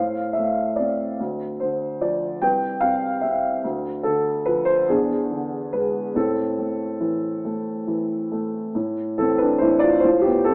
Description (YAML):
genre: classical, lyrical solo piano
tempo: 46-49 BPM (dotted quarters)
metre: 6/8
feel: rubato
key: A minor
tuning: A4 = 440 Hz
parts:
  - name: dark grand piano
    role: solo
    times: 0.0-10.5 s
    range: C2 to G5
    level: -22 LUFS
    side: equal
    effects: none
room: moderate scoring stage reverb, RT60 1.7 s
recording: AM radio sound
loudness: -23 LUFS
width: mono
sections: 0.0-8.7 A section; 8.7-10.5 B section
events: none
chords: 0.0 Amadd11; 1.2 Dm; 2.4 Cmaj7; 3.6 Dm; 4.9 E7; 6.1 Am; 10.0 F/A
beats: | 1.19 2.42 | 3.63 4.88 | 6.15 7.44 | 8.74 10.04